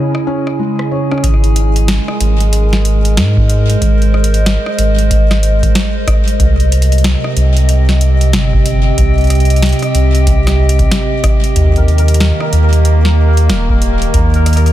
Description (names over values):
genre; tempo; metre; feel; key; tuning
IDM; 93 BPM; 4/4; swing 62% on 16ths; Ab major; A4 = 440 Hz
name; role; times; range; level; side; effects
warbly tape-like pad; sustained chords; 0.0-14.7 s; C3 to Bb5; -16 LUFS; right 1 dB; chorus, built-in reverb
felt-muted upright piano; arpeggios; 0.0-1.2 s; Db3 to Db5; -21 LUFS; left 3 dB; digital delay
pulsing gated texture; texture; 0.0-1.3, 11.6-14.7 s; Bb4 to Eb5; -23 LUFS; left 1 dB; chorus, built-in reverb
booming analog drum machine; drums; 0.1-14.7 s; hi-hat, rim click, snare drum; -20 LUFS; equal; overdrive, digital delay
warm sub bass; bass; 1.2-14.7 s; Eb1 to Ab2; -11 LUFS; equal; none
electronic kick drum; drums; 1.2-14.3 s; none; -14 LUFS; equal; overdrive
room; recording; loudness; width
little or no reverb; dense, heavily limited modern master; -9 LUFS; side -13 dB against mid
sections
0.0-1.2 A section; 1.2-14.7 B section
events
filter sweep on felt piano 0.0-1.2; filter sweep 0.0-1.2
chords
0.0 Dbm; 1.2 Abadd9; 6.4 Cm; 11.6 Eb